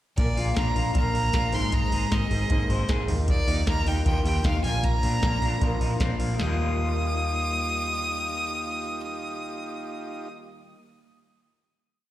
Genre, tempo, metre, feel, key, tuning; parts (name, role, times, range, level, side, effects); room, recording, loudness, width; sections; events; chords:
jangly indie pop; 154 BPM; 4/4; straight; Eb major; A4 = 440 Hz
bright violin; melody; 0.2-10.3 s; D5 to Eb6; -30 LUFS; right 1 dB; slapback echo
combo organ; accompaniment; 0.2-10.3 s; C4 to Bb4; -38 LUFS; right 2 dB; slapback echo
fingerpicked twelve-string acoustic guitar; accompaniment; 0.2-10.8 s; Bb2 to C5; -36 LUFS; right 5 dB; slapback echo
electric guitar through a small old amp; arpeggios; 0.2-10.9 s; Bb2 to C5; -32 LUFS; left 4 dB; harmonic tremolo, slapback echo
vintage muted fingered electric bass; bass; 0.2-10.7 s; Ab1 to Eb2; -27 LUFS; equal
soft vintage rhythm box; drums; 0.2-6.5 s; hi-hat, kick drum, snare drum; -26 LUFS; equal
little or no reverb; live gig heard through the venue's PA, recital hall reverb; -23 LUFS; side -14 dB against mid
0.2-6.4 pre-chorus; 6.4-9.5 final chord
0.2 Bb; 1.5 Abadd9; 3.1 Ebadd9; 4.6 Bb; 6.4 Ebadd9